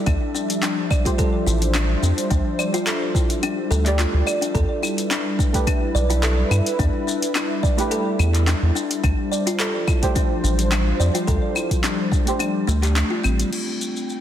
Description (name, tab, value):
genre	organic downtempo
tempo	107 BPM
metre	4/4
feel	swing 54% on 16ths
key	D dorian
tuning	A4 = 440 Hz
part	deep mellow chord stab	accompaniment	0.0-13.5 s	A3 to D5	-28 LUFS	right 3 dB	chorus, sidechain pumping, digital delay
part	warm analog pad	sustained chords	0.0-14.2 s	F3 to E5	-26 LUFS	equal	chorus, sidechain pumping
part	kalimba	arpeggios	0.1-13.4 s	A3 to D5	-25 LUFS	left 2 dB	vintage 12-bit sampler grit, digital delay
part	round analog bass	bass	0.1-13.4 s	A1 to G2	-19 LUFS	equal	tube saturation
part	afro-pop drum kit	drums	0.1-14.2 s	claves, crash cymbal, handclaps, hi-hat, shaker	-27 LUFS	left 1 dB	overdrive
part	electronic kick drum	drums	0.1-12.2 s	none	-21 LUFS	equal	overdrive
part	wind-like tuned noise texture	texture	13.7-14.2 s	G5	-42 LUFS	right 3 dB	built-in reverb
room	light reverb, digital ambience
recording	dense, heavily limited modern master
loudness	-18 LUFS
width	side -10 dB against mid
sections	0.0-13.5 A section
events	none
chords	0.1 Dm11; 4.5 Em7; 9.0 Dm11; 13.5 Em7